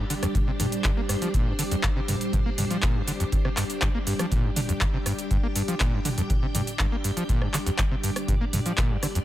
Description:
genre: acid house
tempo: 121 BPM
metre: 4/4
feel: straight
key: unclear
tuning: A4 = 440 Hz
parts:
  - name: string machine, full ensemble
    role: sustained chords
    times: 0.0-9.2 s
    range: D4 to G5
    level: -34 LUFS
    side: equal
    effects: ensemble chorus, vintage 12-bit sampler grit, sidechain pumping
  - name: overdriven acid bass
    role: riff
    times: 0.0-9.2 s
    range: F2 to Bb3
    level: -28 LUFS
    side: equal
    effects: distortion, tube saturation, analog chorus
  - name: ethereal airy pad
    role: texture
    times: 0.0-9.2 s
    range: G3 to D6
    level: -34 LUFS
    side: right 1 dB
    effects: ensemble chorus, built-in reverb, sidechain pumping
  - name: electro analog drum machine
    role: drums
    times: 0.1-9.2 s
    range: handclaps, hi-hat, rim click, shaker, toms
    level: -30 LUFS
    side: equal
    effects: none
  - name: electronic kick drum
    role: drums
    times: 0.3-8.9 s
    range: none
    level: -26 LUFS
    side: equal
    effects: none
room: little or no reverb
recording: none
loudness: -23 LUFS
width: side -14 dB against mid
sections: 0.0-9.2 A section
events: none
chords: 0.0 G5

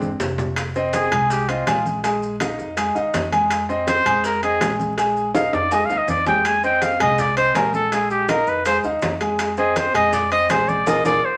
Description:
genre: Afro-Cuban jazz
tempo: 163 BPM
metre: 4/4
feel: straight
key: unclear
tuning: A4 = 440 Hz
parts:
  - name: clear upright piano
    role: accompaniment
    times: 0.0-11.2 s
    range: Ab3 to Ab5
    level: -24 LUFS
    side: equal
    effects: none
  - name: upright bass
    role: bass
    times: 0.0-11.2 s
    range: F1 to F2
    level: -34 LUFS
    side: equal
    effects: none
  - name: bongos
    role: percussion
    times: 0.0-11.1 s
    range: none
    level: -34 LUFS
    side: equal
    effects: none
  - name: congas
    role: percussion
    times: 0.0-11.1 s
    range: none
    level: -33 LUFS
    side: equal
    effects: none
  - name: maracas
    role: percussion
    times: 0.0-11.1 s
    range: none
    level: -43 LUFS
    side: equal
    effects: none
  - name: timbales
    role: percussion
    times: 0.2-11.1 s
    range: none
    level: -30 LUFS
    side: equal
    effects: none
  - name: breathy trumpet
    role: melody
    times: 0.9-11.4 s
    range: F4 to Ab5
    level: -22 LUFS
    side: equal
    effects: none
room: wet studio reverb, RT60 0.9 s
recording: vinyl crackle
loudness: -20 LUFS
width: mono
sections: 0.6-11.4 A section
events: drum fill 0.0-0.6, 5.3-6.5, 10.9-11.4; trumpet solo 0.6-11.4; band accent 10.9-11.4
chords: 0.0 Bb (rootless); 0.6 Fm7; 2.0 Bb7sus4; 3.5 Fm7; 5.0 Bb7sus4; 6.5 Fm7; 7.9 Bb7sus4; 9.4 Fm7; 10.9 Bb5

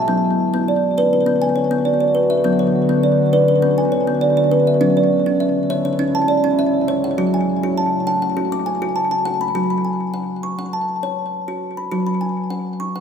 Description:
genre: world meditative, meditative tuned percussion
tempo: 101 BPM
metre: 4/4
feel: straight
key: F# minor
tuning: A4 = 440 Hz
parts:
  - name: deep dark ambient pad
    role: sustained chords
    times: 0.0-9.5 s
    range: C#3 to F#4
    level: -23 LUFS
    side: left 1 dB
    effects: chorus, built-in reverb
  - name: kalimba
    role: arpeggios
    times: 0.0-13.0 s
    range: F#3 to D6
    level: -17 LUFS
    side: equal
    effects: ping-pong delay
room: wet echo chamber reverb, RT60 2.0 s, small room ambience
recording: none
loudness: -16 LUFS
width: side -7 dB against mid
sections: 0.0-9.6 A section; 9.6-13.0 B section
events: none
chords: 0.1 Bm; 4.8 C#m; 7.2 F#m

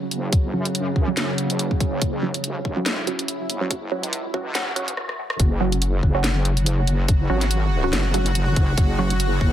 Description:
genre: deep dubstep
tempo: 142 BPM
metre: 4/4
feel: swing 55% on 16ths, half-time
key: unclear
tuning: A4 = 440 Hz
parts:
  - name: bowed-like drone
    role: sustained chords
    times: 0.0-9.5 s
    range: C#3 to F#4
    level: -28 LUFS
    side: right 1 dB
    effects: built-in reverb
  - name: wobble bass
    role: bass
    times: 0.1-9.5 s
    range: E1 to F#2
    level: -24 LUFS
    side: equal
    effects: chorus, high-pass filter
  - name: garage drum kit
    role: drums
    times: 0.1-9.3 s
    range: hi-hat, rim click, snare drum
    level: -25 LUFS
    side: equal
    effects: none
  - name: electronic kick drum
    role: drums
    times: 0.3-9.5 s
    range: none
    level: -20 LUFS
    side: equal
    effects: none
  - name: filtered dub chord stab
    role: stabs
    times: 0.5-9.2 s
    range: F#3 to F#4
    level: -27 LUFS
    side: right 3 dB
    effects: phaser, dub echo
room: light reverb, digital ambience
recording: dense, heavily limited modern master, high-pass filter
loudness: -20 LUFS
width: side -11 dB against mid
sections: 0.0-5.4 A section; 5.4-9.5 B section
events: build-up 0.0-5.4; filter sweep on synth stab 0.0-5.4; filter sweep on synth drone 0.0-5.4; filter sweep 0.0-5.4; drum fill 5.0-5.4; stop 5.0-5.4; drop 5.4-9.5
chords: 0.0 F#5

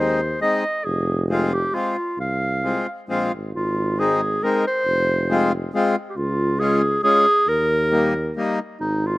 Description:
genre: alpine folk, alpine dance band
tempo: 136 BPM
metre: 3/4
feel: swing 55% on 8ths, rubato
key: F minor, Ab major from 3.5 s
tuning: A4 = 440 Hz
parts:
  - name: warm clarinet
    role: melody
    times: 0.0-9.2 s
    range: Eb4 to F5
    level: -20 LUFS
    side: equal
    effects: slapback echo
  - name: accordion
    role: accompaniment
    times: 0.0-8.6 s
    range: G3 to F4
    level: -22 LUFS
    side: left 2 dB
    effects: slapback echo
  - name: mellow tuba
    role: bass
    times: 0.0-9.2 s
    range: F1 to Eb2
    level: -24 LUFS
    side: equal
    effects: none
room: little or no reverb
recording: recorded outdoors, with no room sound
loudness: -18 LUFS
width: side -19 dB against mid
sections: 0.0-3.5 A section; 3.5-9.2 B section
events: none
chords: 0.0 Ab; 0.9 Fm; 3.5 Ab6; 4.9 Fm; 6.2 Db; 7.5 Eb

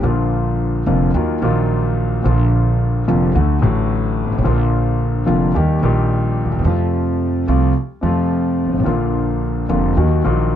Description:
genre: tango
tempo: 108 BPM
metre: 4/4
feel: rubato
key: Bb major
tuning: A4 = 440 Hz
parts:
  - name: warm concert grand piano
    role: accompaniment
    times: 0.0-10.6 s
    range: F1 to G4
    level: -16 LUFS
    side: left 1 dB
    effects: none
  - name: upright bass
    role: bass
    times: 0.0-10.6 s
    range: F1 to F2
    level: -20 LUFS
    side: right 2 dB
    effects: none
room: light reverb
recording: dark, warm production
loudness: -15 LUFS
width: side -10 dB against mid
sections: 0.0-10.6 A section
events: none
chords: 0.0 Bb; 1.1 Ebmadd9; 2.2 Bb; 3.4 D; 4.5 Bb; 5.6 Eb; 6.7 F; 8.9 Bb; 10.0 Ebm

